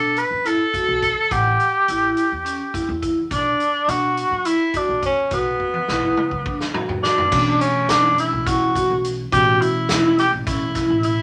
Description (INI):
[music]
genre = progressive instrumental, band music in an uneven meter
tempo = 210 BPM (eighths)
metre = 7/8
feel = straight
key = B minor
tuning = A4 = 440 Hz
[part]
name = clear tenor saxophone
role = melody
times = 0.0-11.2 s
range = B3 to B4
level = -22 LUFS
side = equal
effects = none
[part]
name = vibraphone with medium hard mallets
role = arpeggios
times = 0.0-11.2 s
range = C#4 to F#5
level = -25 LUFS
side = equal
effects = none
[part]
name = upright bass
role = bass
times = 0.0-11.2 s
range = A1 to B2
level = -32 LUFS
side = equal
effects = none
[part]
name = swinging big-band drum kit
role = drums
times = 0.2-11.2 s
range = crash cymbal, hi-hat, kick drum, snare drum, toms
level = -30 LUFS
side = equal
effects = none
[part]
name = tine electric piano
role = accompaniment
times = 7.3-11.2 s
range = B2 to C#4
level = -28 LUFS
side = equal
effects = none
[sound]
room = moderate small room reverb, RT60 0.5 s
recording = none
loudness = -20 LUFS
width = mono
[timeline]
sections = 0.0-7.3 A section; 7.3-11.2 B section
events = drum fill 5.6-7.3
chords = 0.0 Bm7; 1.3 A7(no3); 3.3 Bm; 7.3 Bm7; 9.3 A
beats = 0.17 0.45 0.74 1.03 | 1.31 1.60 1.89 2.17 2.46 2.75 3.03 | 3.32 3.60 3.89 4.18 4.46 4.75 5.04 | 5.32 5.61 5.89 6.18 6.47 6.75 7.04 | 7.32 7.61 7.90 8.18 8.47 8.75 9.04 | 9.32 9.61 9.90 10.18 10.47 10.75 11.04